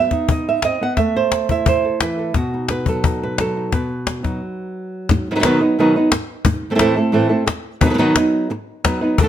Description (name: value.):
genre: flamenco.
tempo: 175 BPM.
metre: 4/4.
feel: straight.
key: unclear.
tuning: A4 = 445 Hz.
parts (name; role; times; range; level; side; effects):
flamenco guitar; melody; 0.0-9.3 s; A2 to F#5; -17 LUFS; right 2 dB; none.
cajon; percussion; 0.1-9.3 s; none; -19 LUFS; left 4 dB; none.
room: moderate large studio reverb, RT60 0.9 s.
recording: close, detailed microphones.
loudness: -16 LUFS.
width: side -10 dB against mid.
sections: 0.0-5.1 A section; 5.1-9.3 B section.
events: stop 4.4-5.1.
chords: 0.0 B; 1.0 Am; 2.4 B; 6.5 Am; 7.8 B.